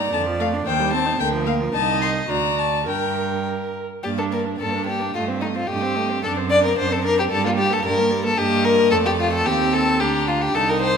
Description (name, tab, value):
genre	quick classical-period movement for string quartet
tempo	111 BPM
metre	2/4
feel	rubato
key	G minor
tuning	A4 = 440 Hz
part	dark violin	melody	0.0-10.9 s	Bb4 to C6	-26 LUFS	left 8 dB	none
part	rich violin	second line	0.0-11.0 s	Eb4 to Eb5	-21 LUFS	left 2 dB	none
part	warm viola	accompaniment	0.0-11.0 s	D3 to Bb4	-26 LUFS	right 3 dB	none
part	rich cello	bass	0.0-11.0 s	C2 to G2	-26 LUFS	right 7 dB	none
room	wet recital hall reverb, RT60 1.5 s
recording	none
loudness	-18 LUFS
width	side -6 dB against mid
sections	0.0-4.0 A section; 4.0-11.0 B section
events	none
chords	0.1 Dm/F; 0.7 Cm/Eb; 1.2 Bb/D; 1.7 Adim/C; 2.3 D; 2.9 Gm; 5.2 Am7b5/G; 6.2 D7/F#; 7.3 Gm; 8.9 Dm/F; 9.5 Cm/Eb; 10.0 Bb/D